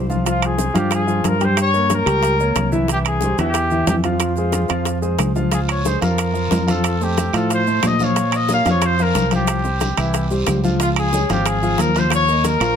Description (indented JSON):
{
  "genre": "latin, salsa",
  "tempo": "182 BPM",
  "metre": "4/4",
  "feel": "straight",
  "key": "unclear",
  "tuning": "A4 = 440 Hz",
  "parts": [
    { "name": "warm concert grand piano", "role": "accompaniment", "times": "0.0-12.8 s", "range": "E3 to G5", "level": "-22 LUFS", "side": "left 1 dB", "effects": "none" },
    { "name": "fingered electric bass", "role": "bass", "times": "0.0-12.8 s", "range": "Ab1 to Bb2", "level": "-21 LUFS", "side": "right 1 dB", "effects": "none" },
    { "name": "bongos", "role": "percussion", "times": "0.1-12.8 s", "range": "none", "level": "-27 LUFS", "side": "left 11 dB", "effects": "none" },
    { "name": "congas", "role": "percussion", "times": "0.1-12.8 s", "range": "none", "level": "-27 LUFS", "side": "left 2 dB", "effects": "none" },
    { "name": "maracas", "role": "percussion", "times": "0.1-12.8 s", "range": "none", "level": "-33 LUFS", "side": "right 8 dB", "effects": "none" },
    { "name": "warm trumpet", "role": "melody", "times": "0.3-12.8 s", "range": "F4 to F5", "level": "-21 LUFS", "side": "left 2 dB", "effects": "none" },
    { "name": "timbales", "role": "percussion", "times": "0.3-12.8 s", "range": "none", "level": "-25 LUFS", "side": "right 10 dB", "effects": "none" },
    { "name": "claves", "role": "percussion", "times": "0.4-12.8 s", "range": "none", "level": "-28 LUFS", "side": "right 6 dB", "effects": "none" },
    { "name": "guiro", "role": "percussion", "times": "5.5-12.8 s", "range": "none", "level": "-34 LUFS", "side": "right 5 dB", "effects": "none" }
  ],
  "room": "little or no reverb",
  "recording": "close, detailed microphones",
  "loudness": "-16 LUFS",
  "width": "side -8 dB against mid",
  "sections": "0.0-12.8 A section",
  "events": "none",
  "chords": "0.3 Csus4; 1.6 Gdim; 2.9 C; 4.2 Dbmaj7; 6.8 F; 8.2 Bbm; 9.5 Csus4; 10.1 C; 10.8 Db; 12.1 Ebsus2"
}